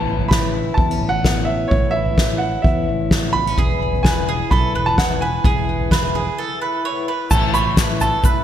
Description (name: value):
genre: indie folk with a building arrangement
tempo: 129 BPM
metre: 4/4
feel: straight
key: A major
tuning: A4 = 440 Hz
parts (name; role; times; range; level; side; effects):
- warm upright piano; melody; 0.0-8.4 s; C#5 to B5; -22 LUFS; right 2 dB; ping-pong delay
- fingerpicked steel-string acoustic guitar; accompaniment; 0.0-5.5 s; E2 to E4; -29 LUFS; left 1 dB; lush chorus
- picked twelve-string acoustic guitar; accompaniment; 0.0-8.4 s; E2 to E4; -28 LUFS; left 5 dB; none
- fingered electric bass; bass; 0.0-8.1 s; E1 to E2; -24 LUFS; equal; none
- soft-mallet drum kit; drums; 0.1-8.3 s; crash cymbal, kick drum, snare drum, toms; -18 LUFS; equal; gated reverb
- bowl-back mandolin; arpeggios; 3.6-8.4 s; G#4 to C#5; -24 LUFS; right 4 dB; ping-pong delay
- warm concert grand piano; accompaniment; 7.3-8.4 s; A1 to B4; -31 LUFS; left 4 dB; none
- egg shaker; percussion; 7.3-8.4 s; none; -32 LUFS; left 14 dB; none
- group handclap; percussion; 7.8-7.9 s; none; -33 LUFS; left 6 dB; none
room: moderate lush hall reverb, RT60 1.9 s, studio ambience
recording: bright 1980s-style digital production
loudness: -16 LUFS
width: side -10 dB against mid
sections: 0.0-7.3 A section; 7.3-8.4 B section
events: break 6.4-7.3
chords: 0.0 Aadd9; 3.6 E; 7.3 Aadd9